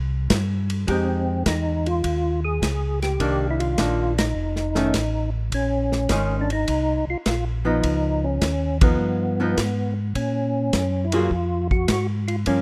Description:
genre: soul jazz organ trio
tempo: 104 BPM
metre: 4/4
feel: swing 69% on 8ths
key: F minor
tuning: A4 = 439 Hz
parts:
  - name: mellow tonewheel organ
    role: bass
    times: 0.0-12.6 s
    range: F1 to Bb2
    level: -27 LUFS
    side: equal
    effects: chorus vibrato, slow rotary speaker
  - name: warm soul drum kit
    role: drums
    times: 0.3-12.6 s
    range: hi-hat, kick drum, ride cymbal, snare drum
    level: -26 LUFS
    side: equal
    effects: none
  - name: percussive tonewheel organ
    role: melody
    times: 0.9-12.6 s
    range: Cb4 to Ab4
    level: -28 LUFS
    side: equal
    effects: slow rotary speaker, chorus vibrato
  - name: archtop guitar, miked and amplified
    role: accompaniment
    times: 0.9-12.6 s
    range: Eb3 to Ab4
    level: -27 LUFS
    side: equal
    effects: none
room: small room ambience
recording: rough home demo mix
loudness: -23 LUFS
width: mono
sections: 0.9-12.6 A section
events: band accent 4.1, 8.7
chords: 0.0 C5; 0.9 Fm9; 3.2 Cm9; 4.4 Faug7; 5.5 Bbm11; 7.8 Db9; 10.2 Gbmaj9

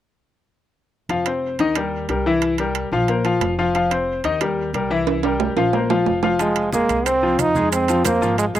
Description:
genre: latin, salsa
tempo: 181 BPM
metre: 4/4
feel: straight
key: F minor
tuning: A4 = 441 Hz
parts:
  - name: bright concert grand piano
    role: accompaniment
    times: 1.1-8.6 s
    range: Eb3 to F5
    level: -20 LUFS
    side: left 3 dB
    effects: none
  - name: upright bass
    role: bass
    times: 1.1-8.6 s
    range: F1 to F2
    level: -27 LUFS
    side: right 1 dB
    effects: none
  - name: timbales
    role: percussion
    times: 1.1-8.6 s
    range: none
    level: -25 LUFS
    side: right 11 dB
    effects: slapback echo
  - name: bright trombone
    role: melody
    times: 6.4-8.6 s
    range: Ab3 to Eb4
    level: -19 LUFS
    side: right 3 dB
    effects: slapback echo
  - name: congas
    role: percussion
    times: 6.4-8.6 s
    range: none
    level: -30 LUFS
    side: right 1 dB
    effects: none
  - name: maracas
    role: percussion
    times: 6.4-8.6 s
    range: none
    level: -30 LUFS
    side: right 17 dB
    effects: none
room: little or no reverb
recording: recorded outdoors, with no room sound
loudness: -17 LUFS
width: side -12 dB against mid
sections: 1.1-6.4 A section; 6.4-8.6 B section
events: drum fill 5.1-6.4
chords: 1.1 F5; 1.8 Eb; 2.4 C7; 3.1 Bbsus2; 3.7 F5; 4.4 Eb; 5.1 C7; 5.7 Bbsus2; 6.4 Fm7; 7.7 Ab69

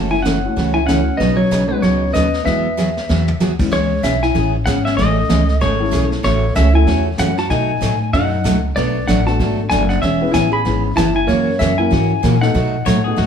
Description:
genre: country, western swing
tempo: 190 BPM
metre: 4/4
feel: swing 61% on 8ths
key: unclear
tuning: A4 = 440 Hz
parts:
  - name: clean lap steel guitar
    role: melody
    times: 0.0-13.3 s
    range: B4 to B5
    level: -21 LUFS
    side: left 2 dB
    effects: none
  - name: archtop guitar, miked and amplified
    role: second line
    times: 0.0-13.3 s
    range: F#3 to G#4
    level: -22 LUFS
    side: equal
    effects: none
  - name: picked steel-string acoustic guitar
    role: accompaniment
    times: 0.0-13.3 s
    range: B2 to B4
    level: -20 LUFS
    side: right 3 dB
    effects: none
  - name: upright bass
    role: bass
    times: 0.0-13.3 s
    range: E1 to B2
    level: -19 LUFS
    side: equal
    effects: none
  - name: vintage brush drum kit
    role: drums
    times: 0.3-13.3 s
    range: brushed snare drum, crash cymbal, hi-hat, kick drum, snare drum, toms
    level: -26 LUFS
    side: equal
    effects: none
  - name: dark upright piano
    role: accompaniment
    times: 0.4-3.7, 5.8-6.9, 9.3-13.3 s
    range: G#3 to B4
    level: -23 LUFS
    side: left 5 dB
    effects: none
  - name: pedal steel guitar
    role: second line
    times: 12.9-13.3 s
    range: F#4 to C#5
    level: -22 LUFS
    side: left 7 dB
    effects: none
room: light reverb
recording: studio reverb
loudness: -14 LUFS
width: side -7 dB against mid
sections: 0.0-3.7 A section; 3.7-13.3 B section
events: drum fill 2.8-3.4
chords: 0.0 F#m7; 1.2 Badd9; 2.5 Eadd9; 3.7 C#m7; 6.2 F#m7/A; 7.5 B7; 8.8 Bm7; 10.0 E6; 11.3 F#7; 12.5 B7

